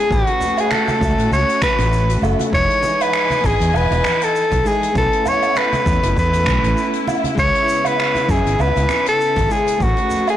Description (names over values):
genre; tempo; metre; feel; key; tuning
sunset chillout; 99 BPM; 4/4; swing 56% on 16ths; unclear; A4 = 440 Hz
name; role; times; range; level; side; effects
breathy soprano saxophone; melody; 0.0-10.4 s; F#4 to C#5; -18 LUFS; left 1 dB; digital delay
nylon-string guitar; accompaniment; 0.0-10.4 s; G#3 to E5; -26 LUFS; equal; auto-pan, digital delay
clear studio string section; sustained chords; 0.0-10.4 s; C#3 to G#5; -26 LUFS; equal; none
fretless electric bass; bass; 0.1-9.9 s; E1 to A2; -19 LUFS; equal; transformer saturation
electronic kick drum; drums; 0.1-9.9 s; none; -23 LUFS; equal; overdrive
jazz brush drum kit; drums; 0.1-10.4 s; finger snaps, hi-hat, shaker, woodblock; -24 LUFS; right 2 dB; soft clipping on snare
congas; percussion; 0.3-10.2 s; none; -29 LUFS; right 2 dB; none
room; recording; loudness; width
light reverb, studio ambience; blown-out, overdriven recording, overdrive; -14 LUFS; side -11 dB against mid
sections
0.0-10.4 A section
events
none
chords
0.1 A69; 2.5 Emaj7; 5.0 B9sus4; 7.4 C#m7; 9.8 A69